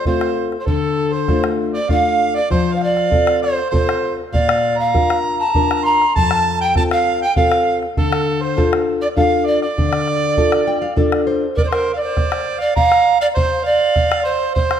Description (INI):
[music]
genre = andean folk, Andean ensemble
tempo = 99 BPM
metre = 3/4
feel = straight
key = D minor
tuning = A4 = 444 Hz
[part]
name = polished pan flute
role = melody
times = 0.0-14.8 s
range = A4 to Bb5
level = -18 LUFS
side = right 1 dB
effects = none
[part]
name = mellow harmonica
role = second line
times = 0.0-14.8 s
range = A4 to C6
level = -22 LUFS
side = right 5 dB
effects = none
[part]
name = nylon-string guitar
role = accompaniment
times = 0.1-11.5 s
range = F2 to G5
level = -20 LUFS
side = left 4 dB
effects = none
[part]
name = bombo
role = percussion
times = 0.1-14.8 s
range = none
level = -21 LUFS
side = right 1 dB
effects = none
[sound]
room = moderate scoring stage reverb, RT60 1.9 s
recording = minimal, uncompressed stereo recording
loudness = -14 LUFS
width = side -9 dB against mid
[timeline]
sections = 0.0-11.6 A section; 11.6-14.8 A section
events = nylon-string guitar fill 10.4-11.6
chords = 0.0 F; 0.7 Dm; 2.5 F; 4.3 Bb; 6.2 F; 8.0 Dm; 11.6 N.C.